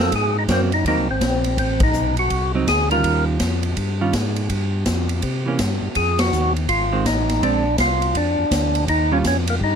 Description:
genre	soul jazz organ trio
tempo	164 BPM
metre	4/4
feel	swing 63% on 8ths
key	unclear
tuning	A4 = 440 Hz
part	percussive tonewheel organ	melody	0.0-3.2, 6.0-9.8 s	Bb3 to Bb4	-20 LUFS	equal	slow rotary speaker, overdrive
part	hollow-body jazz guitar	accompaniment	0.0-9.2 s	Eb3 to F4	-21 LUFS	right 5 dB	none
part	tonewheel organ	bass	0.0-9.8 s	Ab1 to C3	-22 LUFS	left 1 dB	overdrive, slow rotary speaker
part	swinging big-band drum kit	drums	0.0-9.7 s	hi-hat, kick drum, ride cymbal, snare drum	-24 LUFS	equal	none
room	little or no reverb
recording	none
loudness	-17 LUFS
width	side -7 dB against mid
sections	0.0-9.8 A section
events	band accent 1.8, 6.1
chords	0.1 Ab9; 1.6 Adim7; 3.0 Eb9; 4.5 Fsus2; 5.2 C7b9; 6.0 Fm7; 7.4 Bb9; 8.9 Eb9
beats	| 0.12 0.48 0.85 1.21 | 1.58 1.94 2.31 2.67 | 3.04 3.40 3.77 4.13 | 4.50 4.86 5.23 5.59 | 5.96 6.32 6.69 7.05 | 7.42 7.78 8.15 8.51 | 8.88 9.24 9.61

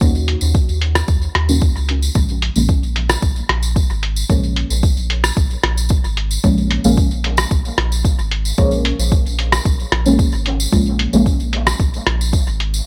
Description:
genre	dub techno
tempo	112 BPM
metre	4/4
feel	straight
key	unclear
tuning	A4 = 440 Hz
part	deep mellow chord stab	stabs	0.0-11.3 s	F3 to Gb4	-21 LUFS	equal	chorus, phaser, sidechain pumping, dub echo
part	soft dub sub bass	bass	0.0-12.8 s	Ab1 to Eb2	-22 LUFS	equal	sidechain pumping
part	electronic kick drum	drums	0.0-12.4 s	none	-18 LUFS	equal	studio reverb
part	tambourine	percussion	0.0-12.8 s	none	-29 LUFS	equal	none
part	lo-fi sampler-style drum kit	drums	0.3-12.7 s	hi-hat, rim click	-21 LUFS	equal	studio reverb, dub echo
room	little or no reverb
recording	dry, gritty hardware recording, transformer saturation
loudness	-17 LUFS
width	mono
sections	0.0-12.9 A section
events	none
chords	0.0 Ebm7; 2.2 Bbm7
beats	| 0.01 0.55 1.08 1.62 | 2.15 2.69 3.23 3.76 | 4.30 4.83 5.37 5.90 | 6.44 6.97 7.51 8.05 | 8.58 9.12 9.65 10.19 | 10.72 11.26 11.80 12.33

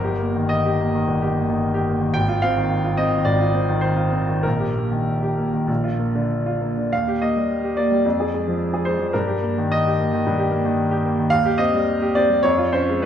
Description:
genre	classical, romantic character piece for solo piano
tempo	92-117 BPM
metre	4/4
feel	rubato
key	Eb major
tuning	A4 = 440 Hz
part	bright baby grand piano	solo	0.0-13.1 s	G1 to G5	-18 LUFS	equal	none
room	wet recital hall reverb, RT60 1.9 s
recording	recorded in a church or concert hall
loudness	-18 LUFS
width	side -9 dB against mid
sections	0.0-13.1 A section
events	none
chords	0.0 Eb/G; 2.1 Fm7/Ab; 4.4 Eb/Bb; 5.7 Bb; 6.9 Eb; 8.0 Ddim/F; 9.1 Eb/G; 11.3 Cm/Eb; 12.4 Db/F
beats	0.52 1.08 1.62 | 2.15 2.70 3.25 3.83 | 4.45 5.07 5.68 6.29 | 6.91 7.48 8.05 8.60 | 9.12 9.72 10.26 10.78 | 11.31 11.87 12.43 13.03

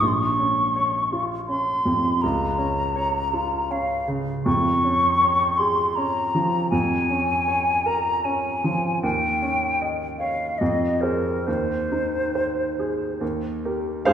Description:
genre	classical, romantic duo for flute and grand piano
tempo	66-83 BPM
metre	3/4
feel	rubato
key	unclear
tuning	A4 = 436 Hz
part	hollow concert flute	melody	0.0-13.2 s	Bb4 to Db6	-22 LUFS	left 1 dB	none
part	bright grand piano	accompaniment	0.0-14.1 s	Bb1 to F5	-24 LUFS	right 1 dB	none
room	wet scoring stage reverb, RT60 1.8 s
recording	heard from further back in the room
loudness	-20 LUFS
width	side -9 dB against mid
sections	0.0-14.1 A section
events	none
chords	0.0 Bbm; 2.2 Bbm/Db; 4.5 Db/F; 6.7 Bbm7/F; 9.0 Eb7; 10.6 Fm7; 11.5 Ab/Eb; 13.2 Eb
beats	| 0.02 0.76 1.49 | 2.23 2.96 3.71 | 4.46 5.21 5.97 | 6.72 7.49 8.26 | 9.04 9.81 10.61 | 11.47 12.36 13.21 | 14.06

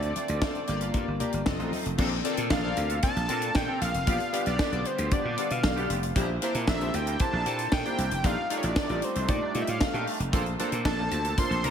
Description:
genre	early-eighties boogie funk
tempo	115 BPM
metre	4/4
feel	straight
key	Bb major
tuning	A4 = 440 Hz
part	fat analog lead	melody	0.0-11.7 s	C5 to C6	-32 LUFS	equal	slapback echo, tape echo
part	chorused polysynth	accompaniment	0.0-11.7 s	A3 to F5	-32 LUFS	left 2 dB	slapback echo
part	lush unison pad	sustained chords	0.0-11.7 s	C3 to F4	-38 LUFS	right 2 dB	none
part	twangy electric guitar	riff	0.0-11.7 s	Eb3 to Bb4	-38 LUFS	right 6 dB	ensemble chorus, slapback echo
part	slap bass	bass	0.0-11.7 s	F1 to B2	-31 LUFS	equal	none
part	tight funk drum kit	drums	0.0-11.7 s	crash cymbal, hi-hat, kick drum, snare drum	-30 LUFS	equal	none
part	congas	percussion	0.2-1.8, 10.3-11.7 s	none	-41 LUFS	left 2 dB	none
room	moderate lush hall reverb, RT60 1.8 s, small room ambience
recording	big arena sound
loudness	-25 LUFS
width	side -8 dB against mid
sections	0.0-2.0 A section; 2.0-11.7 B section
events	none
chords	0.0 Dm7; 0.7 Gm7; 1.5 F7; 2.0 Bbmaj9; 4.1 G7/Bb; 6.2 C9/Bb; 8.2 F13; 10.3 Bbmaj9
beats	0.42 0.94 1.46 | 1.99 2.51 3.03 3.55 | 4.07 4.59 5.12 5.64 | 6.16 6.68 7.20 7.72 | 8.25 8.77 9.29 9.81 | 10.33 10.86 11.38

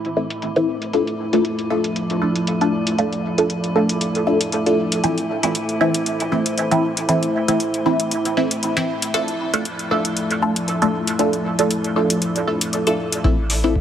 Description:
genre	dub techno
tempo	117 BPM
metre	4/4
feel	swing 54% on 16ths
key	unclear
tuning	A4 = 439 Hz
part	dark analog pad	sustained chords	0.0-13.8 s	F3 to A5	-25 LUFS	equal	chorus, sidechain pumping
part	filtered dub chord stab	stabs	0.0-13.7 s	E3 to A4	-20 LUFS	equal	phaser, sidechain pumping, dub echo
part	electronic hi-hat	drums	0.0-13.6 s	none	-25 LUFS	left 1 dB	overdrive, low-pass filter on hats, low-pass filter on snare
part	metallic inharmonic drone	texture	0.0-13.8 s	E4 to E5	-29 LUFS	right 2 dB	chorus, built-in reverb, sidechain pumping
part	soft dub sub bass	bass	13.2-13.8 s	A1	-22 LUFS	equal	sidechain pumping
part	electronic kick drum	drums	13.2-13.8 s	none	-19 LUFS	equal	none
room	moderate huge ambient reverb, RT60 6.5 s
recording	none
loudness	-18 LUFS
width	side -9 dB against mid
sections	0.0-13.2 A section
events	none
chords	0.0 Am; 0.9 Dm; 5.0 Am; 9.1 Dm; 13.2 Am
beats	0.42 | 0.94 1.45 1.96 2.47 | 2.99 3.50 4.01 4.53 | 5.04 5.55 6.06 6.58 | 7.09 7.60 8.12 8.63 | 9.14 9.65 10.17 10.68 | 11.19 11.71 12.22 12.73 | 13.24 13.76

